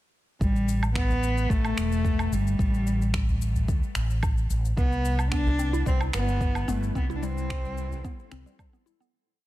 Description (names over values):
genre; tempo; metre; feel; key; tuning
organic downtempo; 110 BPM; 4/4; straight; A minor; A4 = 440 Hz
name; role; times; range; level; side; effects
dark cello; melody; 0.4-8.3 s; G3 to D4; -30 LUFS; left 1 dB; ping-pong delay
mellow fretless electric bass; bass; 0.4-8.4 s; E1 to D2; -27 LUFS; equal; analog chorus, sidechain pumping
electronic cabasa, woodblock and finger snaps; drums; 0.4-9.1 s; none; -36 LUFS; right 1 dB; small room ambience
electronic kick drum; drums; 0.4-8.7 s; none; -27 LUFS; equal; small room ambience
udu; percussion; 1.1-8.0 s; none; -30 LUFS; equal; none
granular cloud pad; sustained chords; 5.7-9.1 s; G3 to B4; -41 LUFS; left 1 dB; built-in reverb, sidechain pumping
mallet-like synth pluck; arpeggios; 5.3-9.1 s; G3 to E4; -35 LUFS; equal; chorus, phaser, cassette tape, tape echo
room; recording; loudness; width
little or no reverb; dense, heavily limited modern master; -23 LUFS; side -16 dB against mid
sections
0.4-9.1 groove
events
fade-out 6.2-9.1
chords
0.4 A5; 4.8 Cmaj7